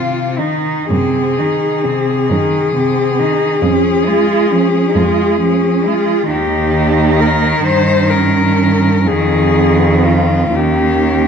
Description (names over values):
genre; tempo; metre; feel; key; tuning
classical, lyrical piece for cello ensemble; 36-46 BPM (dotted quarters); 12/8; rubato; Ab major; A4 = 438 Hz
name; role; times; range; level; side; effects
rich cello; melody; 0.0-11.3 s; Eb4 to C5; -16 LUFS; left 5 dB; none
warm cello; second line; 0.0-11.3 s; C4 to F4; -18 LUFS; right 10 dB; none
rich cello; accompaniment; 0.0-11.3 s; C3 to Ab3; -18 LUFS; left 2 dB; none
rich cello; bass; 0.0-11.3 s; Eb2 to Ab2; -16 LUFS; right 2 dB; none
room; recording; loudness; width
wet recital hall reverb, RT60 1.4 s; dark, warm production, nothing above 10.5 kHz; -11 LUFS; side -7 dB against mid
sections
0.0-11.3 A section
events
none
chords
0.0 Ab; 0.9 Ab7/Gb; 3.6 Db/F; 6.3 Eb; 9.1 Fm7; 10.6 Eb7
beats
| 0.91 2.29 3.63 4.95 | 6.31 7.66 9.06 10.56